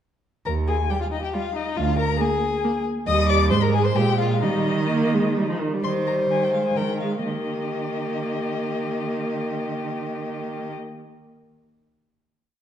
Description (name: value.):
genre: quick classical-period movement for string quartet.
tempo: 122-140 BPM.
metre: 3/4.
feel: rubato.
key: Eb major.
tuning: A4 = 438 Hz.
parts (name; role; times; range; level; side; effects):
rich violin; melody; 0.5-10.7 s; Eb5 to Eb6; -29 LUFS; left 9 dB; none.
warm violin; second line; 0.5-10.7 s; Eb4 to Eb5; -27 LUFS; left 3 dB; none.
rich cello; bass; 0.5-10.7 s; D2 to Eb3; -26 LUFS; right 4 dB; none.
clear viola; accompaniment; 0.9-10.7 s; Eb3 to Bb3; -26 LUFS; right 2 dB; none.
room: wet recital hall reverb, RT60 1.5 s.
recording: dark, warm production.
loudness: -21 LUFS.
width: side -9 dB against mid.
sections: 0.5-5.8 A section; 5.8-7.2 coda; 7.2-10.1 final chord.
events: slowing down 3.7-7.2.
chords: 0.5 Eb; 1.8 Bb7/D; 3.1 Eb; 3.5 Abadd9; 4.0 Bb5; 4.4 Eb; 6.5 Ebadd11; 7.2 Eb.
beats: | 0.47 0.91 1.34 | 1.78 2.21 2.64 | 3.08 3.52 3.97 | 4.43 4.90 5.37 | 5.84 6.30 6.76 | 7.25 7.73 8.20 | 8.68 9.15 9.63.